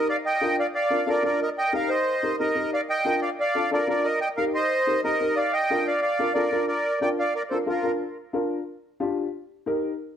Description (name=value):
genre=latin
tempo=182 BPM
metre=4/4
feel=straight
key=Bb major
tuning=A4 = 440 Hz
part: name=accordion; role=melody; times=0.0-7.9 s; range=F4 to G5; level=-23 LUFS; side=right 1 dB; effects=light tremolo tuning, analog delay
part: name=dark upright piano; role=accompaniment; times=0.0-9.9 s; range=D4 to Bb4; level=-27 LUFS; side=left 2 dB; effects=none
room=moderate studio reverb, RT60 0.9 s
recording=none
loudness=-22 LUFS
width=side -9 dB against mid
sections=0.0-8.0 A section; 8.0-10.2 B section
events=none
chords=0.1 Bb; 1.4 Eb; 2.7 Bb; 4.0 Eb; 5.4 Bb; 9.3 Eb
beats=| 0.09 0.42 0.75 1.08 | 1.41 1.74 2.07 2.40 | 2.73 3.06 3.39 3.72 | 4.05 4.38 4.71 5.04 | 5.37 5.70 6.03 6.36 | 6.69 7.02 7.35 7.68 | 8.01 8.35 8.68 9.01 | 9.34 9.67